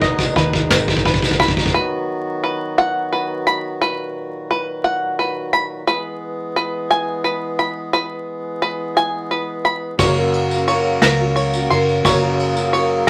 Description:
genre	indie folk with a building arrangement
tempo	58 BPM (dotted quarters)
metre	6/8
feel	straight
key	B major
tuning	A4 = 440 Hz
part	clear upright piano	accompaniment	0.0-1.8, 10.0-13.1 s	F#1 to C#5	-28 LUFS	equal	none
part	picked old ladder-braced acoustic guitar	accompaniment	0.0-1.8, 10.0-13.1 s	G#2 to A#4	-24 LUFS	equal	none
part	hand-pumped harmonium	sustained chords	0.0-13.1 s	A#2 to G#4	-27 LUFS	equal	none
part	bluegrass banjo	arpeggios	0.0-13.1 s	B4 to C6	-22 LUFS	equal	none
part	fingered electric bass	bass	0.0-1.7, 10.0-13.1 s	F#1 to D#2	-25 LUFS	equal	none
part	soft brush drum kit	drums	0.0-1.8, 10.0-13.1 s	kick drum, ride cymbal, snare drum	-22 LUFS	equal	none
part	tambourine	percussion	0.2-1.7, 10.0-12.7 s	none	-34 LUFS	equal	none
room	moderate studio reverb, RT60 0.5 s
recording	vinyl crackle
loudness	-19 LUFS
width	mono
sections	0.0-1.7 A section; 1.7-13.1 B section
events	build-up 0.0-1.7; drum fill 0.0-1.7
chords	0.0 G#m; 1.7 B; 5.9 E; 10.0 F#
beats	0.71 | 1.75 2.78 | 3.81 4.84 | 5.87 6.90 | 7.93 8.96 | 9.99 11.02 | 12.05 13.07

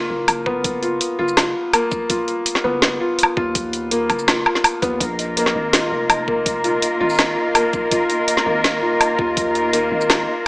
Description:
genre	half-time drum and bass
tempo	165 BPM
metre	4/4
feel	half-time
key	unclear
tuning	A4 = 439 Hz
part	felt-muted upright piano	arpeggios	0.0-10.5 s	Bb3 to F4	-20 LUFS	left 1 dB	tape echo
part	long sustained 808-style bass	bass	0.0-10.3 s	F1 to D#2	-30 LUFS	equal	none
part	drum and bass drum kit	drums	0.3-10.2 s	hi-hat, shaker, snare drum, woodblock	-18 LUFS	equal	overdrive
part	electronic kick drum	drums	0.5-9.4 s	none	-27 LUFS	equal	overdrive
part	muted symphonic cello section	sustained chords	5.0-10.5 s	Bb3 to Bb4	-22 LUFS	equal	sidechain pumping
part	pulsing gated texture	texture	5.0-10.5 s	Eb4 to Eb5	-26 LUFS	right 1 dB	chorus, built-in reverb
room	moderate echo chamber reverb, RT60 1.5 s, digital ambience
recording	small speaker sound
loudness	-16 LUFS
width	side -24 dB against mid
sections	0.0-10.5 A section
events	none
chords	0.0 B; 5.0 Bb5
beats	0.28 | 0.64 1.01 1.37 1.73 | 2.10 2.46 2.83 3.19 | 3.55 3.92 4.28 4.64 | 5.01 5.37 5.73 6.10 | 6.46 6.83 7.19 7.55 | 7.92 8.28 8.64 9.01 | 9.37 9.73 10.10 10.46

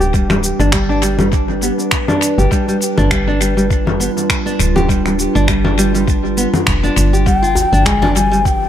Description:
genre	organic downtempo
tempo	101 BPM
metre	4/4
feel	swing 56% on 16ths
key	unclear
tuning	A4 = 436 Hz
part	warbly tape-like pad	sustained chords	0.0-8.7 s	F3 to B4	-20 LUFS	right 1 dB	chorus, built-in reverb, sidechain pumping
part	nylon-string guitar	arpeggios	0.0-8.4 s	G3 to G4	-18 LUFS	equal	low-pass filter, tape echo
part	woody FM bass	bass	0.0-8.7 s	D1 to G1	-17 LUFS	equal	sidechain pumping
part	electronic cabasa, finger snaps and congas	drums	0.0-8.6 s	none	-19 LUFS	left 2 dB	tape echo
part	electronic kick drum	drums	0.1-8.6 s	none	-18 LUFS	equal	none
part	breathy mellow low ney	melody	7.3-8.7 s	G5 to Ab5	-16 LUFS	left 3 dB	analog delay
part	djembe	percussion	7.6-8.7 s	none	-25 LUFS	left 1 dB	tape echo
room	light reverb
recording	echo-heavy mix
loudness	-12 LUFS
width	side -10 dB against mid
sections	0.0-8.7 A section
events	filter sweep on nylon-string guitar 0.0-8.7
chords	0.0 G7; 7.3 Fm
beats	| 0.14 0.73 1.33 1.92 | 2.51 3.11 3.70 4.30 | 4.89 5.48 6.08 6.67 | 7.27 7.86 8.46

